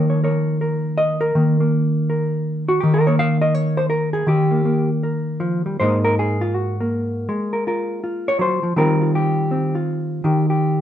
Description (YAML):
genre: solo jazz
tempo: 162 BPM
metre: 4/4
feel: swing 64% on 8ths, rubato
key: Eb mixolydian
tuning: A4 = 440 Hz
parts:
  - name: hollow-body jazz guitar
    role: solo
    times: 0.0-10.8 s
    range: Ab2 to F5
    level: -17 LUFS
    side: equal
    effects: none
room: wet studio reverb, RT60 0.8 s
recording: minimal, uncompressed stereo recording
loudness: -17 LUFS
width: side -10 dB against mid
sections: 0.0-10.8 A section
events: hollow-body jazz guitar solo 0.0-10.8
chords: 0.0 Eb9; 5.8 Ab13; 8.8 Eb69